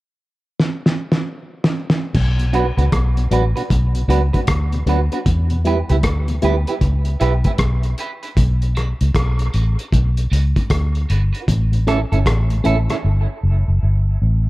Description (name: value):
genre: dub reggae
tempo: 77 BPM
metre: 4/4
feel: swing 63% on 16ths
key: B minor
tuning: A4 = 440 Hz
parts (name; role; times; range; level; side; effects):
- cloth-damped thuddy drum kit; drums; 0.6-13.0 s; crash cymbal, hi-hat, kick drum, rim click, snare drum; -20 LUFS; equal; none
- vintage muted fingered electric bass; bass; 2.2-14.5 s; F#1 to E2; -16 LUFS; equal; none
- mellow tonewheel organ; accompaniment; 2.4-13.0 s; E2 to E4; -27 LUFS; left 3 dB; slow rotary speaker, high-pass filter, dub echo
- clean electric guitar; accompaniment; 2.5-13.0 s; C#4 to B4; -23 LUFS; right 5 dB; high-pass filter, dub echo
room: small room ambience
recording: dark, warm production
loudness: -15 LUFS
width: side -19 dB against mid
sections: 0.0-2.1 A section; 2.1-14.5 B section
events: drum fill 0.6-2.1; filter sweep 5.3-11.5; drums muted 13.0-14.5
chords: 0.0 N.C.; 2.1 Bm; 5.3 Em; 8.4 Bm; 11.5 A